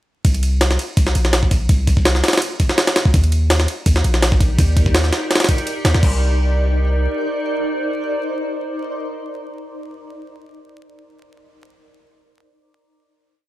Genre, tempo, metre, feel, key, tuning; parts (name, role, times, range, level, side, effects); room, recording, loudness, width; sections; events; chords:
drum and bass, jungle; 166 BPM; 4/4; straight; C minor; A4 = 440 Hz
long sustained 808-style bass; bass; 0.2-7.1 s; Bb1 to Eb2; -16 LUFS; equal
jungle sampler-style drum kit; drums; 0.2-6.1 s; crash cymbal, kick drum, ride cymbal, snare drum; -16 LUFS; equal
granular cloud pad; sustained chords; 4.3-9.7 s; Eb4 to D5; -24 LUFS; equal; built-in reverb
little or no reverb; vinyl crackle; -15 LUFS; side -15 dB against mid
0.2-6.0 drop; 6.0-8.9 final chord
drop 0.2-6.0
0.2 Bbsus2; 3.1 Ebmaj7; 6.0 Cm9